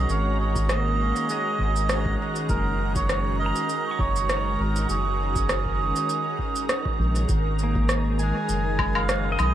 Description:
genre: ambient dub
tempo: 100 BPM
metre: 4/4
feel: swing 55% on 16ths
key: unclear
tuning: A4 = 444 Hz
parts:
  - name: melodica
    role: melody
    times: 0.0-9.5 s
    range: G#4 to G#5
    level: -28 LUFS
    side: right 5 dB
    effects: dub echo
  - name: soft additive organ-like pad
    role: sustained chords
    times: 0.0-9.5 s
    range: D#3 to A#5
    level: -30 LUFS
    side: equal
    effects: ensemble chorus, built-in reverb
  - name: round analog bass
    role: bass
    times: 0.0-9.5 s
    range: F#1 to B1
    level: -25 LUFS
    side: equal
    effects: none
  - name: electronic shaker, rim click and woodblock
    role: drums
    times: 0.1-9.5 s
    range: none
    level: -28 LUFS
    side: equal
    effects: dub echo
  - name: electronic kick drum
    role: drums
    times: 0.6-8.9 s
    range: none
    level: -29 LUFS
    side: equal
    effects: overdrive
  - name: pedal steel guitar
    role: arpeggios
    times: 0.7-9.5 s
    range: G#3 to C#6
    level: -33 LUFS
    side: left 2 dB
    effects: dub echo
room: light reverb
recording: vinyl crackle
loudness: -22 LUFS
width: side -11 dB against mid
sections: 0.0-7.3 A section; 7.3-9.5 B section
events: none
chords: 0.0 G#7sus2; 2.5 F#add9; 7.3 G#7sus2

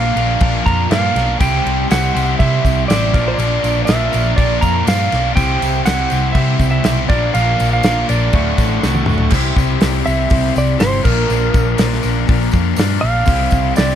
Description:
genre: classic rock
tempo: 121 BPM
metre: 4/4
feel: straight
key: unclear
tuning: A4 = 440 Hz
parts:
  - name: clean lap steel guitar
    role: melody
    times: 0.0-14.0 s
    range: Bb4 to Bb5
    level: -19 LUFS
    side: right 3 dB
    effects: tape echo
  - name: cranked stack guitar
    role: riff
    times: 0.0-9.3 s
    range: D2 to C5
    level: -24 LUFS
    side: right 14 dB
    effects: overdrive
  - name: crunchy overdriven guitar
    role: riff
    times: 0.0-14.0 s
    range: D2 to C5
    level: -22 LUFS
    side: left 1 dB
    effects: none
  - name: distorted electric guitar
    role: riff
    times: 0.0-14.0 s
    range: D2 to C5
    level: -22 LUFS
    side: left 16 dB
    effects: distortion
  - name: hollow-body short-scale picked electric bass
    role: bass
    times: 0.0-14.0 s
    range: D1 to C3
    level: -18 LUFS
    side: equal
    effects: none
  - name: damped 70s drum kit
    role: drums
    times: 0.2-14.0 s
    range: crash cymbal, hi-hat, kick drum, snare drum, toms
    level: -18 LUFS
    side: equal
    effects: none
  - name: tambourine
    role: percussion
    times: 1.4-13.9 s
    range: none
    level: -36 LUFS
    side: right 7 dB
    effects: none
room: little or no reverb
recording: none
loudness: -13 LUFS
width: side -10 dB against mid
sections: 0.0-9.3 A section; 9.3-14.0 B section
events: drum fill 8.8-9.3; electric slide guitar solo 9.3-14.0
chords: 0.0 Bb; 1.4 C; 3.1 Bb; 5.4 C; 7.1 Bb; 8.3 D; 9.3 C; 11.1 Bb; 13.3 C

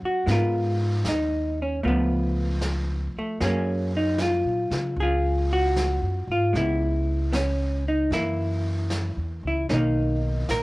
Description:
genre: jazz ballad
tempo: 76 BPM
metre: 4/4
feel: swing 68% on 8ths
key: unclear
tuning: A4 = 440 Hz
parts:
  - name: vintage hollow-body jazz guitar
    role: accompaniment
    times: 0.0-10.6 s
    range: Eb3 to Bb4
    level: -25 LUFS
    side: equal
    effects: none
  - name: upright bass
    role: bass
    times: 0.0-10.6 s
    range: A#1 to Db3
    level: -26 LUFS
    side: equal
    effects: none
  - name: vintage brush drum kit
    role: drums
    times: 0.3-10.6 s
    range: brushed snare drum, hi-hat, snare drum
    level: -34 LUFS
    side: equal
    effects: cassette tape
room: light reverb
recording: home recording on cassette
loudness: -22 LUFS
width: side -20 dB against mid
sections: 0.0-10.6 A section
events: none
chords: 0.3 Abmadd9; 1.8 Dbaug7; 3.4 Gbmaj9; 6.5 Dbm7; 8.1 Gb7; 9.7 Bmaj7

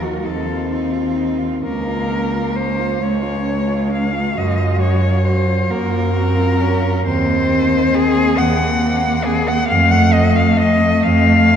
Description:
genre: classical, lyrical piece for cello ensemble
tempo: 45 BPM (dotted quarters)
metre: 6/8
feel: rubato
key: Bb minor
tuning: A4 = 445 Hz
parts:
  - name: rich cello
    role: melody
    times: 0.0-11.6 s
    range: Gb4 to Gb5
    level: -19 LUFS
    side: left 2 dB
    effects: none
  - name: warm cello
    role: second line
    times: 0.0-11.6 s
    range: A3 to Gb4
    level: -25 LUFS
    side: right 5 dB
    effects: none
  - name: clear cello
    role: accompaniment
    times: 0.0-11.6 s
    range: F3 to Db4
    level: -19 LUFS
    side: left 2 dB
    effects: none
  - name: rich cello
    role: bass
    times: 0.0-11.6 s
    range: Db2 to Gb2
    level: -18 LUFS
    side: right 1 dB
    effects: none
room: wet church reverb, RT60 2.7 s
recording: dark, warm production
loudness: -14 LUFS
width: side -8 dB against mid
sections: 0.0-11.6 A section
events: none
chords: 0.0 F7/Eb; 1.6 Bbm/Db; 4.4 Gbmaj7; 7.0 Cm7b5/Eb; 9.7 F

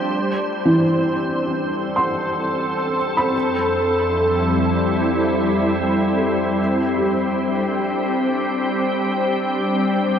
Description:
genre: ambient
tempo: free time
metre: none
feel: none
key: unclear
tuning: A4 = 440 Hz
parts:
  - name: soft additive organ-like pad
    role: sustained chords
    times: 0.0-10.2 s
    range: F2 to C5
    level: -18 LUFS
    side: equal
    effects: ensemble chorus, built-in reverb
  - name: felt-muted upright piano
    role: arpeggios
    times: 0.7-10.2 s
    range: E3 to C6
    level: -23 LUFS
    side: right 1 dB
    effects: tape echo
room: wet huge ambient reverb, RT60 8.7 s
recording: none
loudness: -17 LUFS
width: side -8 dB against mid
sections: 0.1-10.2 A section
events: fade-out on felt piano 0.1-10.2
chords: 0.1 D5; 3.3 C6/F; 6.6 Gsus4

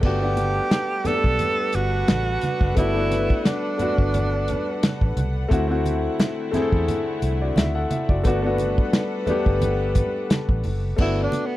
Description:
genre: lush 1970s-style soul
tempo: 88 BPM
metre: 4/4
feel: swing 54% on 16ths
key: G major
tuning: A4 = 440 Hz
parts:
  - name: clear concert grand piano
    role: accompaniment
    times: 0.0-11.6 s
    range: A3 to F#5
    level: -25 LUFS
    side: left 2 dB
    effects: none
  - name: warm studio string section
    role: sustained chords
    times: 0.0-11.0 s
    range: D3 to F#5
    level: -32 LUFS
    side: left 2 dB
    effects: none
  - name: vintage muted fingered electric bass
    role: bass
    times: 0.0-11.3 s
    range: F#1 to E2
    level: -25 LUFS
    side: equal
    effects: none
  - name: warm soul drum kit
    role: drums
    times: 0.0-11.5 s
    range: crash cymbal, hi-hat, kick drum, snare drum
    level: -21 LUFS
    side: equal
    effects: none
  - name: congas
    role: percussion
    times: 0.0-11.5 s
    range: none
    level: -31 LUFS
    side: right 2 dB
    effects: none
  - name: breathy tenor saxophone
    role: melody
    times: 0.1-5.2, 11.0-11.6 s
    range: B3 to A4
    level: -25 LUFS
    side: right 3 dB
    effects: none
room: little or no reverb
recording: dry, close 1970s-style studio recording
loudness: -19 LUFS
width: side -15 dB against mid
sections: 0.0-11.0 A section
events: none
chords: 0.0 Gmaj9; 5.5 D9; 8.2 Gmaj7; 11.0 Gmaj9

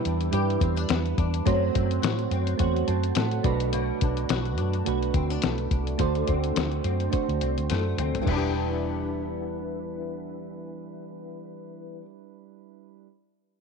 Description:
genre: indie pop, bedroom pop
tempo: 106 BPM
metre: 4/4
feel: swing 55% on 16ths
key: E minor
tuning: A4 = 440 Hz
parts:
  - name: flamenco guitar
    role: accompaniment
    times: 0.0-12.1 s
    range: B2 to G4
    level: -32 LUFS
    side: left 12 dB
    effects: ensemble chorus, warbly pitch drift
  - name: soft electric-piano-like synth keys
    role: accompaniment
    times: 0.0-13.1 s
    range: G3 to A5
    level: -30 LUFS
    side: right 15 dB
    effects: chorus
  - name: vintage muted fingered electric bass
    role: bass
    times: 0.1-12.0 s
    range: E1 to A2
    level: -28 LUFS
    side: equal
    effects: none
  - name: lo-fi sampler-style drum kit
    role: drums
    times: 0.1-8.4 s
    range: crash cymbal, hi-hat, kick drum, snare drum, toms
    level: -28 LUFS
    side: left 4 dB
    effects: none
room: light reverb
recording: 1960s-style stereo with parts hard left and right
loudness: -24 LUFS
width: side -5 dB against mid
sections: 0.0-8.3 A section; 8.3-10.5 B section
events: synth keys fill 2.6-3.7; drum fill 7.7-8.3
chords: 0.0 Em7; 1.5 F#dim; 3.4 Bm7; 6.0 D7; 8.3 Em7

